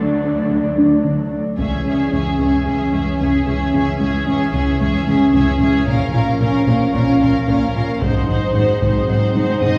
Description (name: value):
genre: cinematic, hybrid orchestral and electronic film score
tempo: 112 BPM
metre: 4/4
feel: straight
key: C# dorian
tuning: A4 = 440 Hz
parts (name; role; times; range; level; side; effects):
- warm symphonic viola section; accompaniment; 0.0-9.8 s; F#3 to D#4; -24 LUFS; equal; none
- dark French horn section; sustained chords; 0.0-9.8 s; B#3 to F#4; -32 LUFS; equal; none
- hollow soft pad; sustained chords; 0.0-9.8 s; E3 to D5; -24 LUFS; equal; chorus
- rich symphonic cello section; bass; 0.0-9.8 s; C#2 to D#4; -27 LUFS; equal; none
- tight sequenced synth; arpeggios; 0.2-9.8 s; C#3 to A#4; -25 LUFS; equal; chorus, phaser, digital delay
- warm symphonic violin section; melody; 1.6-9.8 s; E5 to D#6; -32 LUFS; equal; none
- rich symphonic violin section; second line; 1.6-9.8 s; G#4 to D#5; -27 LUFS; equal; none
- warm studio double bass section; bass; 1.6-9.7 s; G#1 to C#2; -24 LUFS; equal; none
- taiko ensemble; drums; 1.6-2.6, 5.9-9.8 s; none; -26 LUFS; equal; none
- swell; sound effects; 9.1-9.8 s; none; -27 LUFS; equal; none
room: wet scoring stage reverb, RT60 1.7 s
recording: heard from further back in the room, small room ambience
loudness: -17 LUFS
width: mono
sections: 0.0-1.6 A section; 1.6-9.8 B section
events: drum fill 9.4-9.8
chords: 0.0 D; 1.6 C#m; 5.9 A#m; 8.0 G#7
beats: 0.52 1.05 | 1.59 2.13 2.66 3.20 | 3.73 4.27 4.80 5.34 | 5.88 6.41 6.95 7.48 | 8.02 8.55 9.09 9.63